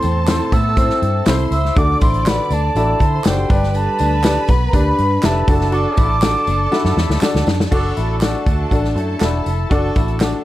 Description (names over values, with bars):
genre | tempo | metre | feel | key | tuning
uptempo 1960s-style soul | 121 BPM | 4/4 | straight | D mixolydian | A4 = 440 Hz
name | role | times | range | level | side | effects
breathy hollow jazz flute | melody | 0.0-7.5 s | G5 to E6 | -21 LUFS | right 1 dB | plate reverb
clear symphonic violin section | second line | 0.0-10.4 s | A4 to D6 | -28 LUFS | right 2 dB | plate reverb
vibraphone with hard mallets | second line | 0.0-7.5 s | G4 to E5 | -31 LUFS | right 3 dB | plate reverb
warm concert grand piano | accompaniment | 0.0-10.4 s | G2 to E5 | -22 LUFS | left 2 dB | plate reverb
electric guitar at the edge of break-up | riff | 0.0-10.4 s | B3 to F#4 | -26 LUFS | left 6 dB | wide subtle chorus
vintage muted fingered electric bass | bass | 0.0-10.3 s | E1 to D3 | -19 LUFS | equal | none
natural country drum kit | drums | 0.0-10.3 s | crash cymbal, hi-hat, kick drum, snare drum | -18 LUFS | equal | none
tambourine and handclaps | percussion | 0.0-10.3 s | none | -33 LUFS | right 4 dB | none
clear horn section | second line | 5.7-10.4 s | F#3 to A4 | -27 LUFS | right 2 dB | plate reverb
room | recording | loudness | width
light reverb | none | -14 LUFS | side -15 dB against mid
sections
0.0-7.7 A section; 7.7-10.4 B section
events
band accent 5.7-7.7; drum fill 6.7-7.7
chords
0.0 Am; 1.8 D; 3.5 G; 5.5 D/F#; 7.7 D